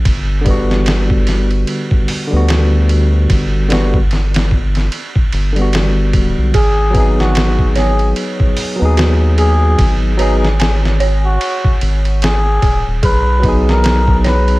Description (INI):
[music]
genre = trip hop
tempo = 74 BPM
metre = 4/4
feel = swing 58% on 16ths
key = unclear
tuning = A4 = 440 Hz
[part]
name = round analog bass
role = bass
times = 0.0-14.6 s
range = D1 to D#2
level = -14 LUFS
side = equal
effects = none
[part]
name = trip hop sampler-style drum kit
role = drums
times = 0.1-14.6 s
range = hi-hat, kick drum, ride cymbal, snare drum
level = -17 LUFS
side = equal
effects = overdrive, small room ambience
[part]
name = overdriven tine electric piano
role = accompaniment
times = 0.4-14.6 s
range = D3 to G#4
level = -18 LUFS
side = equal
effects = harmonic tremolo, tape echo
[part]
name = dark detuned synth bell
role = arpeggios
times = 6.5-14.6 s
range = F#4 to G#5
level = -23 LUFS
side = right 2 dB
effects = chorus, tape echo
[part]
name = trumpet with cup mute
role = melody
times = 6.6-14.6 s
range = F#4 to B4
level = -20 LUFS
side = left 1 dB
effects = tape echo
[sound]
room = digital ambience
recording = none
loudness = -11 LUFS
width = side -20 dB against mid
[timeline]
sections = 0.0-14.6 A section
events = none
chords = 0.1 Gmaj7; 6.5 G#m7; 13.0 B6